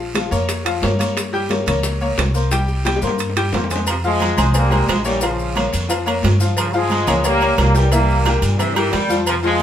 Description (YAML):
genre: latin, salsa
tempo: 178 BPM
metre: 4/4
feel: straight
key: F harmonic minor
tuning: A4 = 439 Hz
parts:
  - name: bright upright piano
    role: accompaniment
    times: 0.0-9.6 s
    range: E3 to G5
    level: -21 LUFS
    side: left 3 dB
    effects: none
  - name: upright bass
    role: bass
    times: 0.0-9.6 s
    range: Bb1 to G2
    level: -20 LUFS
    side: equal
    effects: none
  - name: congas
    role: percussion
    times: 0.1-9.6 s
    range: none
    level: -29 LUFS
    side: right 1 dB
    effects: none
  - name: guiro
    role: percussion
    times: 0.1-9.6 s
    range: none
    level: -32 LUFS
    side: right 3 dB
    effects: none
  - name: maracas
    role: percussion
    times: 0.1-9.6 s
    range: none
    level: -32 LUFS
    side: left 4 dB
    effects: none
  - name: bongos and cowbell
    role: percussion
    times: 0.2-9.4 s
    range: none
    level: -29 LUFS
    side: left 3 dB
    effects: none
  - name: timbales and agogo bells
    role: percussion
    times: 0.2-9.4 s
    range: none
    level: -24 LUFS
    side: right 5 dB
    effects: none
  - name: bright trombone section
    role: melody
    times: 3.9-9.6 s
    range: C3 to Bb3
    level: -20 LUFS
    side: right 1 dB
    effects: none
  - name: clear saxophone section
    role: second line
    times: 8.3-9.2 s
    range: Bb2 to G3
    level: -23 LUFS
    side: right 1 dB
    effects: none
room: wet studio reverb, RT60 0.5 s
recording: band playing live in one room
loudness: -15 LUFS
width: side -10 dB against mid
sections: 0.0-3.9 A section; 3.9-9.6 B section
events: drum fill 2.9-3.9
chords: 0.0 Bbm; 1.2 Gdim; 2.5 C5; 3.9 Fmadd9; 5.2 Bbm; 6.6 Gm7b5; 7.9 C7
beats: 0.15 0.48 0.82 | 1.16 1.50 1.84 2.18 | 2.52 2.85 3.19 3.53 | 3.87 4.21 4.54 4.88 | 5.22 5.56 5.89 6.23 | 6.57 6.91 7.24 7.58 | 7.92 8.25 8.59 8.93 | 9.26 9.60